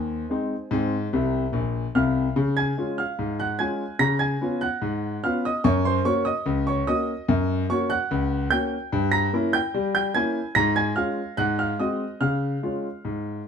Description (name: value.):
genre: ragtime piano.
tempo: 73 BPM.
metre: 2/4.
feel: straight.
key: Db major.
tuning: A4 = 441 Hz.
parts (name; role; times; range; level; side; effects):
clear grand piano; solo; 0.0-13.5 s; Bb1 to Bb6; -22 LUFS; equal; none.
room: moderate studio reverb, RT60 0.7 s.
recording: dark, warm production.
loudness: -22 LUFS.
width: side -7 dB against mid.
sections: 0.0-2.4 A section; 2.4-13.5 B section.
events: grand piano fill 1.1-2.4.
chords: 0.0 Ab; 2.4 Db; 4.0 Db7; 5.6 Gb; 8.9 Gdim7; 10.6 Db/Ab; 11.4 Ab7; 12.2 Db.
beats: | 0.70 1.53 | 2.36 3.18 | 4.00 4.82 | 5.64 6.46 | 7.28 8.10 | 8.92 9.74 | 10.55 11.38 | 12.20 13.04.